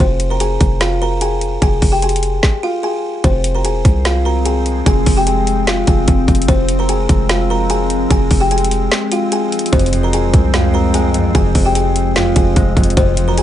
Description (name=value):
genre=hip hop, trap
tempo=148 BPM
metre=4/4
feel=half-time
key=F minor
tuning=A4 = 440 Hz
part: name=buzzing kalimba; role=melody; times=0.0-13.4 s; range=C4 to Bb5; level=-18 LUFS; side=left 1 dB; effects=none
part: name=warm 808-style bass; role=bass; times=0.0-13.4 s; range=E1 to C2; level=-17 LUFS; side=equal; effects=none
part: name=trap drum kit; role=drums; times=0.0-13.4 s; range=hi-hat, kick drum, snare drum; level=-15 LUFS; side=equal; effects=none
part: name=glassy FM pad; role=sustained chords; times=4.1-13.4 s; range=F3 to C4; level=-21 LUFS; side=left 1 dB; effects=ensemble chorus, built-in reverb
part: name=concert harp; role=accompaniment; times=9.7-13.4 s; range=F2 to Ab3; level=-18 LUFS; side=left 1 dB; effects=none
room=digital ambience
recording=nothing above 10.6 kHz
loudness=-12 LUFS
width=side -12 dB against mid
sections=0.0-3.2 A section; 3.2-13.4 B section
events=stop 2.4-3.2; break 8.9-9.7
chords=0.0 Fm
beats=| 0.00 0.40 0.81 1.21 | 1.62 2.02 2.43 2.83 | 3.24 3.65 4.05 4.46 | 4.86 5.27 5.67 6.08 | 6.48 6.89 7.29 7.70 | 8.11 8.51 8.92 9.32 | 9.73 10.13 10.54 10.94 | 11.35 11.75 12.16 12.56 | 12.97 13.38